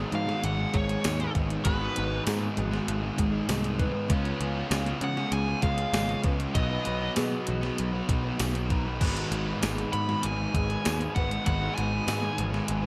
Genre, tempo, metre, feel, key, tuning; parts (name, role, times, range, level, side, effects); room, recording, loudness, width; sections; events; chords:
rock, shoegaze and dream pop; 98 BPM; 4/4; straight; G# dorian; A4 = 439 Hz
fingerpicked twelve-string acoustic guitar; arpeggios; 0.0-12.9 s; E#4 to B4; -42 LUFS; equal; analog chorus, analog delay
biting overdriven guitar; riff; 0.0-12.9 s; G#2 to C#4; -38 LUFS; equal
raw garage guitar; riff; 0.0-12.9 s; G#2 to B4; -38 LUFS; equal; overdrive, reverse reverb
thick fuzz guitar; riff; 0.0-12.9 s; G#2 to C#4; -37 LUFS; equal; distortion, subtle chorus
picked electric bass; bass; 0.0-12.9 s; G#1 to C#3; -34 LUFS; equal
nasal lead guitar with a parked wah; melody; 0.1-12.9 s; B4 to B5; -36 LUFS; equal; overdrive, analog delay
gated 80s digital drum machine; drums; 0.1-12.8 s; crash cymbal, hi-hat, kick drum, snare drum; -33 LUFS; equal; gated reverb, gated reverb snare
tambourine; percussion; 1.1-12.2 s; -46 LUFS; equal
light reverb; -28 LUFS; mono
0.0-12.9 A section
0.0 G#m7; 4.1 C#7; 6.6 Bmaj7; 9.0 G#m7